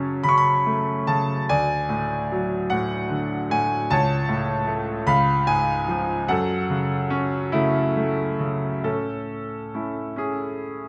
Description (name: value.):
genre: classical, lyrical solo piano.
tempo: 44-51 BPM (dotted quarters).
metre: 6/8.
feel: rubato.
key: F# minor.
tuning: A4 = 440 Hz.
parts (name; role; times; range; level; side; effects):
bright grand piano; solo; 0.0-10.9 s; C#2 to C#6; -23 LUFS; equal; none.
room: moderate recital hall reverb, RT60 1.3 s.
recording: none.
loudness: -23 LUFS.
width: mono.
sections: 0.0-8.8 A section; 8.8-10.9 B section.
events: none.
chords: 0.0 F#m; 1.5 D; 3.9 A/C#; 5.1 C#; 6.3 F#m; 8.8 A.